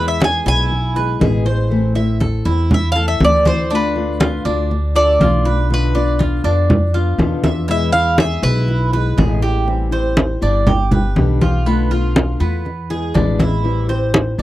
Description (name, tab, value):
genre	latin, Cuban son and guajira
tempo	121 BPM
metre	4/4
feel	straight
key	A minor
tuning	A4 = 440 Hz
part	Cuban tres	melody	0.0-8.9 s	B4 to G#5	-18 LUFS	equal	none
part	nylon-string guitar	accompaniment	0.0-14.4 s	B2 to G4	-22 LUFS	left 3 dB	none
part	Cuban tres	arpeggios	0.0-14.4 s	B3 to E5	-23 LUFS	right 2 dB	none
part	upright bass	bass	0.0-14.4 s	G1 to F2	-18 LUFS	equal	none
part	congas	percussion	0.2-14.4 s	none	-17 LUFS	equal	none
room	little or no reverb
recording	dry, close 1970s-style studio recording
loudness	-14 LUFS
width	side -15 dB against mid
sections	0.0-9.7 A section; 9.7-14.4 B section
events	Cuban tres solo 0.0-9.7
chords	0.0 E; 1.7 Am; 3.7 Dm; 5.7 Bdim; 7.7 E; 9.7 Am7; 10.7 G; 11.7 Bm7b5; 12.7 E7; 13.6 Am7